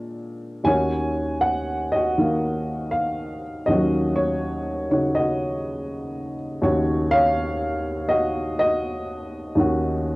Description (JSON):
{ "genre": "solo jazz", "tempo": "81 BPM", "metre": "4/4", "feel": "swing 67% on 8ths, rubato", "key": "Eb minor", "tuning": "A4 = 440 Hz", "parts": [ { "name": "warm upright piano", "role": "solo", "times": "0.0-10.2 s", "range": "Eb2 to Ab5", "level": "-21 LUFS", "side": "equal", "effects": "cassette tape" } ], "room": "moderate studio reverb, RT60 0.6 s", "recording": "home recording on cassette", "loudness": "-20 LUFS", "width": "side -21 dB against mid", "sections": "0.7-10.2 A section", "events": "none", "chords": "0.0 Bb7#9; 0.7 Ebm7" }